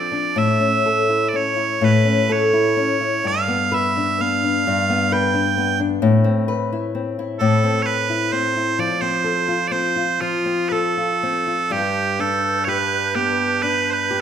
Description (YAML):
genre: celtic folk, Celtic slow air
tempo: 64 BPM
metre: 3/4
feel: uneven beats, rubato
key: G mixolydian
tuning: A4 = 439 Hz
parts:
  - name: loud bright bagpipes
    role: melody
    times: 0.0-14.2 s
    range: F4 to G5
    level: -20 LUFS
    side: right 5 dB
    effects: none
  - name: nylon-string guitar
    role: accompaniment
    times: 0.0-14.2 s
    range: G2 to B4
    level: -20 LUFS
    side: left 3 dB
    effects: none
  - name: bright flute section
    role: sustained chords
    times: 11.7-14.2 s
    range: B4 to G6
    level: -25 LUFS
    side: right 4 dB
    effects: none
room: moderate recital hall reverb, RT60 1.3 s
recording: minimal, uncompressed stereo recording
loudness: -17 LUFS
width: side -8 dB against mid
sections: 0.0-11.7 A section; 11.7-14.2 B section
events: none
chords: 0.4 A; 3.2 G7; 6.0 Amadd9; 8.8 F; 11.7 Gadd9